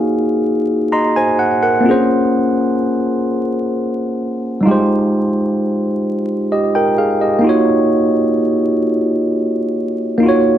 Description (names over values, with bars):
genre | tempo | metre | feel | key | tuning
R&B | 43 BPM (dotted quarters) | 6/8 | straight | Eb dorian | A4 = 439 Hz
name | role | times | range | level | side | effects
tine electric piano | solo | 0.0-10.6 s | G3 to C6 | -13 LUFS | equal | phaser, slapback echo
room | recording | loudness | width
light reverb | vinyl crackle | -13 LUFS | side -10 dB against mid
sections
0.0-10.6 A section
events
tine electric piano fill 0.5-1.9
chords
0.0 Ebm9; 1.9 Bbm9; 4.6 Fm9; 7.4 Ebm9